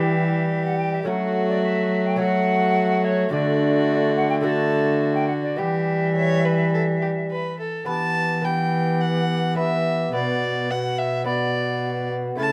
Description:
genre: classical, renaissance-style consort dance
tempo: 106 BPM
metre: 4/4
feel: straight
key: E dorian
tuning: A4 = 440 Hz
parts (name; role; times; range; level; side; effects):
- mellow alto recorder; melody; 0.0-12.5 s; F#4 to A5; -30 LUFS; equal; none
- rich violin; second line; 0.0-12.5 s; F#4 to A5; -29 LUFS; equal; none
- dark bassoon; accompaniment; 0.0-12.5 s; G3 to B3; -28 LUFS; equal; none
- lute; accompaniment; 0.0-12.5 s; B2 to B4; -32 LUFS; equal; none
- warm cello; bass; 0.0-12.5 s; B2 to F#3; -26 LUFS; equal; none
room: light reverb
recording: close, detailed microphones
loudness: -22 LUFS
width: mono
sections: 0.0-7.9 A section; 7.9-12.5 B section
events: none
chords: 0.0 Em; 1.1 F#m; 3.3 D; 5.6 Em; 10.1 Bm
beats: 0.51 | 1.07 1.63 2.20 2.76 | 3.32 3.88 4.44 5.01 | 5.58 6.15 6.73 7.30 | 7.87 8.44 9.01 9.57 | 10.14 10.70 11.26 11.83 | 12.39

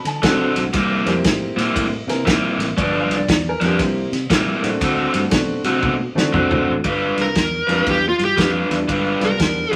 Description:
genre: electric blues shuffle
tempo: 118 BPM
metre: 4/4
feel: swing 64% on 8ths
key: unclear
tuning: A4 = 439 Hz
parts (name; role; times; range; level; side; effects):
- clear upright piano; accompaniment; 0.0-9.8 s; F3 to A5; -27 LUFS; equal; none
- fingered electric bass; bass; 0.0-9.8 s; G1 to D3; -28 LUFS; equal; none
- natural country drum kit; drums; 0.1-9.8 s; kick drum, ride cymbal, snare drum, toms; -24 LUFS; equal; none
- overdriven electric guitar; riff; 0.2-9.8 s; G2 to B4; -22 LUFS; equal; none
- dark smooth lead guitar; melody; 7.2-9.8 s; F4 to Bb4; -21 LUFS; equal; overdrive
room: wet studio reverb, RT60 0.8 s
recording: vinyl crackle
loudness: -19 LUFS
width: mono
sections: 0.0-6.8 A section; 6.8-9.8 B section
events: drum fill 5.8-6.8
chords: 0.0 D7; 0.7 C7; 2.8 G7; 3.8 C7; 4.8 D7; 6.8 G7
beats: 0.23 | 0.74 1.25 1.76 2.27 | 2.78 3.29 3.79 4.30 | 4.81 5.32 5.83 6.34 | 6.84 7.36 7.86 8.37 | 8.88 9.39

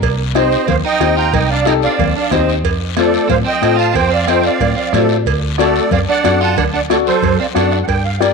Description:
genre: latin, cumbia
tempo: 183 BPM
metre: 4/4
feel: straight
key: unclear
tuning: A4 = 440 Hz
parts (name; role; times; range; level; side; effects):
- vintage muted fingered electric bass; bass; 0.0-8.3 s; C2 to A2; -19 LUFS; right 1 dB; none
- bombo; percussion; 0.0-8.3 s; none; -25 LUFS; equal; none
- cowbell and timbales; percussion; 0.0-8.3 s; none; -24 LUFS; right 15 dB; none
- guiro; percussion; 0.0-8.3 s; none; -28 LUFS; left 14 dB; none
- warm upright piano; accompaniment; 0.3-8.3 s; Eb4 to Eb5; -18 LUFS; left 12 dB; none
- congas; percussion; 0.3-8.3 s; none; -24 LUFS; left 12 dB; none
- musette accordion; melody; 0.4-8.3 s; A4 to Bb5; -17 LUFS; right 5 dB; tape echo
- electric guitar at the edge of break-up; second line; 0.4-7.8 s; F#3 to F4; -22 LUFS; right 11 dB; none
room: moderate echo chamber reverb, RT60 1.9 s, small room ambience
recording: 1960s-style stereo with parts hard left and right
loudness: -12 LUFS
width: side -4 dB against mid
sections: 0.0-7.9 A section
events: none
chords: 0.0 Cm; 2.6 F; 5.3 D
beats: | 0.03 0.36 0.68 1.01 | 1.34 1.67 1.99 2.32 | 2.65 2.97 3.30 3.63 | 3.95 4.28 4.61 4.93 | 5.26 5.59 5.92 6.24 | 6.57 6.90 7.22 7.55 | 7.88 8.21

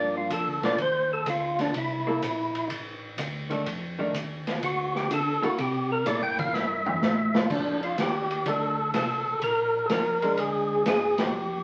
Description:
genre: soul jazz organ trio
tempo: 125 BPM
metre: 4/4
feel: swing 68% on 8ths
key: unclear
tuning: A4 = 436 Hz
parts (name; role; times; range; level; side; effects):
- percussive tonewheel organ; melody; 0.0-11.6 s; D4 to G5; -29 LUFS; equal; slow rotary speaker, overdrive
- archtop guitar, miked and amplified; accompaniment; 0.0-10.8 s; Eb3 to A4; -33 LUFS; equal; none
- mellow tonewheel organ; bass; 0.0-11.6 s; A1 to D3; -37 LUFS; equal; chorus vibrato, slow rotary speaker
- swinging big-band drum kit; drums; 0.3-11.3 s; crash cymbal, hi-hat, kick drum, ride cymbal, snare drum, toms; -34 LUFS; equal; none
room: wet large studio reverb, RT60 0.9 s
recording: very old 78 rpm record, vinyl crackle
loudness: -27 LUFS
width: mono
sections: 0.0-7.5 A section; 7.5-11.6 B section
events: tonewheel organ solo 0.0-7.5; drum fill 6.5-7.5; band accent 11.1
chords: 0.0 Gm7; 1.7 C13; 3.7 F6; 4.6 D5; 5.6 C6; 7.5 F13; 9.4 Bb6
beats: 0.31 0.79 1.27 | 1.75 2.23 2.71 3.19 | 3.66 4.14 4.62 5.10 | 5.58 6.06 6.54 7.02 | 7.50 7.98 8.46 8.94 | 9.42 9.90 10.38 10.86 | 11.34

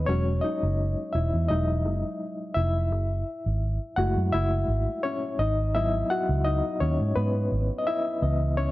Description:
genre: lush 1970s-style soul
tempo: 85 BPM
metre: 4/4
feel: swing 54% on 16ths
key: unclear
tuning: A4 = 441 Hz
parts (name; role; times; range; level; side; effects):
- reed electric piano; accompaniment; 0.0-8.7 s; E3 to F#5; -27 LUFS; left 2 dB; fast tremolo
- vintage muted fingered electric bass; bass; 0.0-8.7 s; E1 to G#2; -25 LUFS; right 1 dB; none
room: light reverb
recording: none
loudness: -24 LUFS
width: side -17 dB against mid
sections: 0.0-8.7 A section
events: reed electric piano solo 0.0-8.7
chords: 0.1 Emaj9; 2.9 F#m9; 5.4 G#m7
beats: | 0.08 0.79 1.50 2.20 | 2.91 3.62 4.33 5.04 | 5.74 6.45 7.16 7.87 | 8.58

